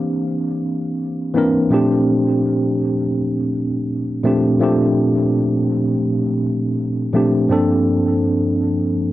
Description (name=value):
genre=R&B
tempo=83 BPM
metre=4/4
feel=straight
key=unclear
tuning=A4 = 442 Hz
part: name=mellow tine electric piano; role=solo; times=0.0-9.1 s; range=G2 to Bb4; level=-16 LUFS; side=equal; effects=medium stereo tremolo, cassette tape, analog delay
room=moderate small room reverb, RT60 0.5 s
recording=home recording on cassette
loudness=-16 LUFS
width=side -15 dB against mid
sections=0.0-9.1 A section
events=none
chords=0.0 C9; 1.7 Bbmaj13; 7.5 Gm11